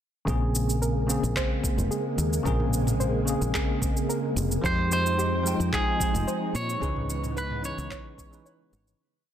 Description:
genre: sunset chillout.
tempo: 110 BPM.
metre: 4/4.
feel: straight.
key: Bb minor.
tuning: A4 = 440 Hz.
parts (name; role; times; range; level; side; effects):
bell-like tine electric piano; accompaniment; 0.3-9.0 s; Db3 to G5; -30 LUFS; equal; medium stereo tremolo, auto-pan, low-pass filter, tape echo.
soft string machine; sustained chords; 0.3-9.0 s; Db3 to G5; -33 LUFS; equal; ensemble chorus.
soft round pluck; arpeggios; 0.3-8.7 s; G4 to Db5; -37 LUFS; right 1 dB; chorus, tape echo.
fingered electric bass; bass; 0.3-8.9 s; F1 to Bb2; -28 LUFS; equal; tube saturation.
electronic kick drum; drums; 0.3-8.3 s; none; -29 LUFS; equal; studio reverb.
smooth R&B drum kit; drums; 0.3-9.0 s; handclaps, shaker, toms; -33 LUFS; right 1 dB; studio reverb.
semi-hollow electric guitar; melody; 4.7-8.7 s; Ab4 to Db5; -29 LUFS; right 1 dB; vintage 12-bit sampler grit, tape echo.
room: light reverb.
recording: dense, heavily limited modern master.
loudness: -24 LUFS.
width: side -10 dB against mid.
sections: 0.3-9.0 groove.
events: filter sweep on tine electric piano 0.3-9.0; fade-out 6.1-9.0.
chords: 0.3 Bbm9; 4.6 Fm9; 6.8 Dbm9.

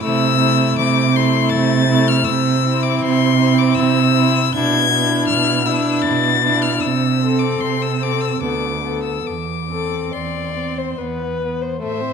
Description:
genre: classical, slow romantic movement for string quartet.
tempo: 67-81 BPM.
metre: 3/4.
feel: rubato.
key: A minor.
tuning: A4 = 440 Hz.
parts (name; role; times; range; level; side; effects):
rich violin; melody; 0.0-12.1 s; E5 to A6+20c; -20 LUFS; left 11 dB; none.
dark violin; second line; 0.0-12.1 s; A3 to D5; -24 LUFS; left 4 dB; none.
rich viola; accompaniment; 0.0-12.1 s; A3 to C5; -24 LUFS; right 3 dB; none.
rich cello; bass; 0.0-12.1 s; D2 to C3; -19 LUFS; right 4 dB; none.
room: moderate scoring stage reverb, RT60 1.9 s.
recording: none.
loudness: -15 LUFS.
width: side -6 dB against mid.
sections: 0.0-11.8 A section.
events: none.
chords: 0.0 Am/C; 2.3 C; 4.5 E7/B; 6.8 Am/C; 8.4 Bm7/D; 9.3 Am/E (rootless); 11.0 E5.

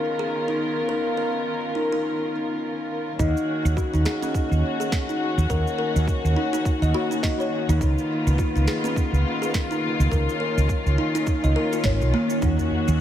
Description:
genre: organic downtempo.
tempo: 104 BPM.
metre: 4/4.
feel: swing 59% on 16ths.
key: Eb minor.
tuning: A4 = 440 Hz.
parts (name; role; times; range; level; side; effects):
dark studio string section; sustained chords; 0.0-13.0 s; Eb3 to Bb4; -26 LUFS; left 1 dB; sidechain pumping.
quartz singing bowl; texture; 0.0-13.0 s; Eb4 to Eb5; -38 LUFS; right 1 dB; none.
kalimba; arpeggios; 0.2-13.0 s; Bb3 to Eb5; -27 LUFS; left 1 dB; tape echo.
woody fretless electric bass; bass; 3.2-13.0 s; Ab1 to Eb2; -21 LUFS; right 1 dB; sidechain pumping.
electronic kick drum; drums; 3.2-12.6 s; none; -24 LUFS; right 1 dB; none.
electronic shaker and snare drum; drums; 3.2-13.0 s; none; -34 LUFS; right 1 dB; none.
udu; percussion; 12.6-12.8 s; none; -28 LUFS; equal; none.
room: moderate plate reverb, RT60 1.6 s, small room ambience.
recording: dreamy mix soaked in reverb.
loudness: -21 LUFS.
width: side -11 dB against mid.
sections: 0.0-3.2 A section; 3.2-13.0 B section.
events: break 2.0-3.2.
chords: 0.0 Db13; 3.2 Ebm7; 7.8 Db13; 12.4 Ebm7.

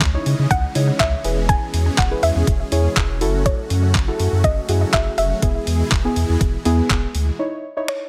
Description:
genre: dance-pop.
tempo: 122 BPM.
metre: 4/4.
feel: straight.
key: E major.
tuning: A4 = 440 Hz.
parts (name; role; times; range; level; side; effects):
soft round pluck; melody; 0.0-8.1 s; C#5 to G#5; -25 LUFS; equal; chorus, digital delay.
supersaw chords; sustained chords; 0.0-7.4 s; B2 to D#5; -30 LUFS; equal; sidechain pumping.
warm sub bass; bass; 0.0-7.3 s; E1 to C#3; -22 LUFS; equal; sidechain pumping.
detuned 8-bit digital drum machine; drums; 0.0-8.0 s; finger snaps, handclaps, hi-hat, kick drum; -23 LUFS; equal; overdrive.
deep mellow chord stab; accompaniment; 0.1-8.1 s; B3 to C#5; -26 LUFS; equal; chorus, sidechain pumping.
room: digital ambience.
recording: none.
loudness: -19 LUFS.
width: mono.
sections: 0.0-7.4 A section.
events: none.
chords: 0.0 C#madd9; 1.2 E; 3.2 F#m7; 5.4 E; 7.4 C#madd9.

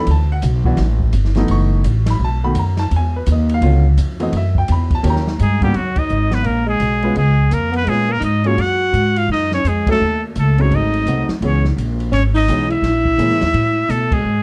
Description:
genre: jazz, small-group swing and bop.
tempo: 169 BPM.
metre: 4/4.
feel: swing 63% on 8ths.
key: G# minor from 5.7 s.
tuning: A4 = 440 Hz.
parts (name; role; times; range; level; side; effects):
clear baby grand piano; accompaniment; 0.0-13.4 s; G#2 to C#6; -24 LUFS; equal; none.
upright bass; bass; 0.0-14.4 s; F#1 to B2; -19 LUFS; equal; none.
open jazz drum kit; drums; 0.1-14.2 s; hi-hat, kick drum, ride cymbal, snare drum; -28 LUFS; equal; none.
trumpet with straight mute; melody; 5.4-14.4 s; F#4 to F#5; -23 LUFS; equal; none.
breathy alto saxophone; second line; 5.4-14.4 s; F#3 to F#4; -23 LUFS; equal; none.
room: light reverb.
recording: dark, warm production.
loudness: -16 LUFS.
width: mono.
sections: 0.0-5.7 A section; 5.7-14.4 B section.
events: band accent 5.9, 9.8, 14.1.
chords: 0.1 D69; 1.5 F#m7; 2.2 B7; 2.9 Emaj7; 3.6 C#7b9; 4.3 Emadd9; 5.0 D#7; 5.7 G#madd9; 7.2 C#7; 8.6 F#sus2; 10.0 D#m7b5; 10.7 G#7b9; 11.4 C#m7; 12.8 A#m7b5; 13.5 Asus2.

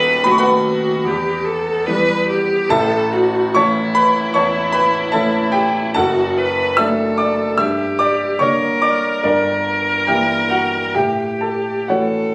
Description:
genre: classical, romantic duo for viola and grand piano.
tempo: 62-78 BPM.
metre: 4/4.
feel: rubato.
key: unclear.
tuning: A4 = 444 Hz.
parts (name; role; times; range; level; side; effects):
warm viola; melody; 0.0-12.3 s; E4 to B4; -21 LUFS; equal; none.
clear concert grand piano; accompaniment; 0.0-12.3 s; D#1 to E6; -19 LUFS; equal; none.
room: light reverb.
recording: recorded on a phone in the room, studio reverb.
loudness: -17 LUFS.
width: mono.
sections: 0.0-12.3 A section.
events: none.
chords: 0.0 B7/D#; 1.1 Em; 2.7 A; 6.0 D/F#; 7.6 Gm; 9.2 Em7b5/G; 11.0 A7.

